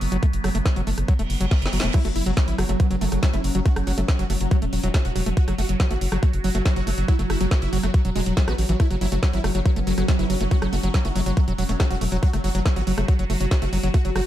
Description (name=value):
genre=psychedelic trance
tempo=140 BPM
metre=4/4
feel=straight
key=F# minor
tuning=A4 = 440 Hz
part: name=evolving wavetable pad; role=sustained chords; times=0.0-14.3 s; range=F#3 to F#4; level=-30 LUFS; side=right 2 dB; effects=phaser, built-in reverb, sidechain pumping
part: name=round analog bass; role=bass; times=0.0-14.2 s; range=E1 to A1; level=-24 LUFS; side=equal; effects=none
part: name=drum and bass drum kit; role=drums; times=0.0-14.2 s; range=crash cymbal, hi-hat, rim click, snare drum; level=-31 LUFS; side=equal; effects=overdrive
part: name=screaming distorted acid line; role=riff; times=0.1-14.2 s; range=E3 to F#4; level=-29 LUFS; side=equal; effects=distortion, chorus, auto-pan, sidechain pumping, ping-pong delay
part: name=electronic kick drum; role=drums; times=0.2-14.0 s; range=none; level=-19 LUFS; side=equal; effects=none
part: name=reverse cymbal and noise sweep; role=sound effects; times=1.2-1.9, 13.9-14.3 s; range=none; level=-33 LUFS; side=right 5 dB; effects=none
part: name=supersaw stab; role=melody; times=1.9-14.2 s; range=F#3 to F#4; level=-29 LUFS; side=equal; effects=phaser, sidechain pumping, ping-pong delay
part: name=formant-sweep wobble bass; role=second line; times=2.8-5.0, 9.7-11.2 s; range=E3 to E4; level=-41 LUFS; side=left 5 dB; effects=none
room=digital ambience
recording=dark, warm production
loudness=-19 LUFS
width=side -12 dB against mid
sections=0.0-1.9 A section; 1.9-14.3 B section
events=reverse cymbal 1.2-1.9; drum fill 1.5-1.9; drop 1.9-14.3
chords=0.0 F#5